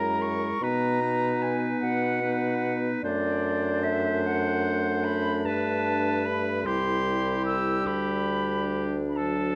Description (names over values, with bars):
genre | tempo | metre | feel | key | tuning
classical, slow romantic movement for wind quintet | 50 BPM (dotted quarters) | 6/8 | rubato | B major, G major from 3.0 s | A4 = 440 Hz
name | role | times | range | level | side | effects
concert flute | melody | 0.0-9.6 s | D5 to E6 | -32 LUFS | equal | none
clear oboe | second line | 0.0-9.6 s | G4 to C5 | -35 LUFS | equal | none
clear clarinet | accompaniment | 0.0-9.6 s | D4 to E4 | -36 LUFS | equal | none
mellow French horn | accompaniment | 0.0-9.6 s | F#3 to B3 | -34 LUFS | equal | none
warm bassoon | bass | 0.0-9.6 s | C2 to B2 | -32 LUFS | equal | none
room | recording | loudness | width
moderate recital hall reverb, RT60 1.4 s | close, detailed microphones | -27 LUFS | mono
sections
0.0-9.6 A section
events
none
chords
0.0 F#9; 0.6 B; 3.0 D7/F#; 5.5 G; 6.6 C; 7.9 G/D